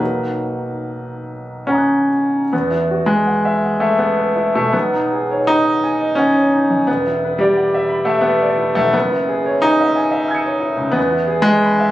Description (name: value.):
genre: classical, impressionist solo piano.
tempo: 69-92 BPM.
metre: 3/4.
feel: rubato.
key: B major.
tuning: A4 = 440 Hz.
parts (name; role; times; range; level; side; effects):
clear grand piano; solo; 0.0-11.9 s; E1 to C#7; -14 LUFS; equal; none.
room: light reverb.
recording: recorded on a phone in the room, club reverb, compression.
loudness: -14 LUFS.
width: side -14 dB against mid.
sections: 0.0-2.5 A section; 2.5-11.9 B section.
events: none.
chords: 0.0 Bmaj7; 2.5 Eadd9; 4.7 B69; 6.9 Em9; 8.9 F#9sus4; 11.0 Emaj7.